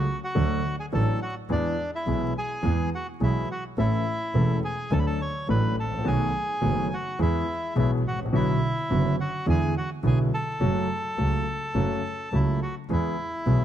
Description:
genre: tango.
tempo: 105 BPM.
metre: 4/4.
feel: rubato.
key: unclear.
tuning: A4 = 442 Hz.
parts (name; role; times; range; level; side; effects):
bandoneon; melody; 0.0-13.6 s; D4 to C#6; -30 LUFS; equal; none.
warm grand piano; accompaniment; 0.0-13.6 s; E1 to A4; -26 LUFS; equal; none.
dark double bass; bass; 0.0-13.6 s; E1 to E2; -27 LUFS; right 2 dB; none.
room: light reverb.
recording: close, detailed microphones, vinyl crackle.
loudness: -23 LUFS.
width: side -10 dB against mid.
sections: 0.0-13.6 A section.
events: none.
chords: 0.4 D; 1.5 E; 3.8 A; 4.9 D; 6.1 B7; 7.2 E; 8.3 Bm; 9.5 E7; 10.6 F#m; 12.9 E.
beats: 0.36 0.93 | 1.50 2.06 2.64 3.21 | 3.78 4.35 4.92 5.49 | 6.06 6.63 7.20 7.77 | 8.34 8.91 9.47 10.04 | 10.61 11.18 11.75 12.32 | 12.90 13.47.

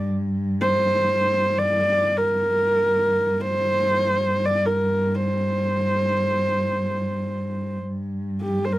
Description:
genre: mongolian traditional, Mongolian folk.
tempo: free time.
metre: none.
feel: none.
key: G yu mode.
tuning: A4 = 442 Hz.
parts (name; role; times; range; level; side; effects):
warm horsehead fiddle; melody; 0.0-8.8 s; G4 to D5; -21 LUFS; equal; none.
dark cello; drone; 0.0-8.8 s; G2; -25 LUFS; equal; stereo widening.
room: moderate booth ambience, RT60 0.3 s.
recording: dry, close 1970s-style studio recording.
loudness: -20 LUFS.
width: side -16 dB against mid.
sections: 0.0-8.8 A section.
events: none.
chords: none.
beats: free time.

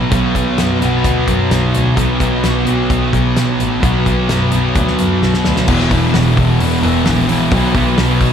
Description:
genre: rock, shoegaze and dream pop.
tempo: 130 BPM.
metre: 4/4.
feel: straight.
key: unclear.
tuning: A4 = 440 Hz.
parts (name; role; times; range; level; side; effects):
thick fuzz guitar; riff; 0.0-8.3 s; E2 to B3; -14 LUFS; equal; distortion, wide subtle chorus.
bright double bass; bass; 0.0-8.3 s; E1 to F#2; -18 LUFS; equal; none.
loose indie drum kit; drums; 0.1-8.3 s; crash cymbal, hi-hat, kick drum, snare drum; -20 LUFS; equal; none.
room: wet huge ambient reverb, RT60 7.6 s.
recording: dreamy mix soaked in reverb.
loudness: -12 LUFS.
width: side -8 dB against mid.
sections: 0.0-5.7 A section; 5.7-8.3 B section.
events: drum fill 5.2-5.7.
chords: 0.0 Bm; 5.7 E5; 7.5 B5.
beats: | 0.12 0.58 1.04 1.51 | 1.97 2.44 2.90 3.36 | 3.83 4.29 4.75 5.21 | 5.68 6.14 6.60 7.06 | 7.52 7.98.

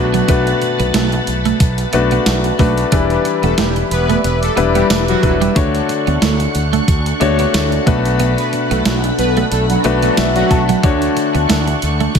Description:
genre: 1980s-style pop.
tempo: 91 BPM.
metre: 4/4.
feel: swing 55% on 16ths.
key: unclear.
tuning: A4 = 440 Hz.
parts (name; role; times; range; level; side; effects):
clear grand piano; accompaniment; 0.0-12.2 s; B2 to A5; -17 LUFS; left 5 dB; none.
ensemble organ-string; sustained chords; 0.0-12.2 s; D4 to C#6; -22 LUFS; right 1 dB; phaser, ensemble chorus.
analog synth brass; stabs; 0.0-10.6 s; F#3 to B4; -21 LUFS; equal; chorus, ping-pong delay.
fretless electric bass; bass; 0.0-12.2 s; E1 to D2; -18 LUFS; right 1 dB; none.
twelve-string electric guitar; riff; 0.1-12.2 s; F#3 to D4; -22 LUFS; right 10 dB; wide subtle chorus, ping-pong delay.
clean 12-bit digital drum machine; drums; 0.1-12.2 s; hi-hat, kick drum, snare drum, tambourine; -19 LUFS; equal; overdrive.
room: light reverb, digital ambience.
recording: none.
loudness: -12 LUFS.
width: side -6 dB against mid.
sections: 0.0-12.2 A section.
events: none.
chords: 0.0 Bm7; 2.9 Em7; 5.6 Dmaj7; 7.9 Bm7; 10.8 Dmaj7.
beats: | 0.29 0.94 1.60 2.26 | 2.92 3.58 4.24 4.90 | 5.56 6.22 6.88 7.54 | 8.20 8.86 9.52 10.18 | 10.84 11.49 12.15.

